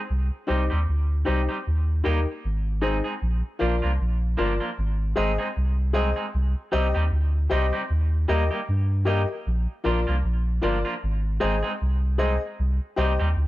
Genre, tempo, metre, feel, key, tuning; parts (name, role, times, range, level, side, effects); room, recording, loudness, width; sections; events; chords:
reggae; 77 BPM; 4/4; swing 58% on 16ths; Bb mixolydian; A4 = 439 Hz
soft dub sub bass; bass; 0.1-13.5 s; G1 to G2; -23 LUFS; equal
clean electric guitar; accompaniment; 0.5-13.3 s; F3 to Ab4; -30 LUFS; right 2 dB; tape echo
dark grand piano; stabs; 0.5-13.2 s; Eb4 to Eb5; -28 LUFS; left 3 dB
small room ambience; dry, close 1970s-style studio recording; -22 LUFS; side -16 dB against mid
0.0-3.2 A section; 3.2-13.5 B section
0.1 Cm; 1.7 Eb; 2.4 Ab; 3.2 Bb; 4.8 Ab; 6.3 Cm; 7.9 Eb; 9.5 Bb; 11.0 Ab; 12.6 Cm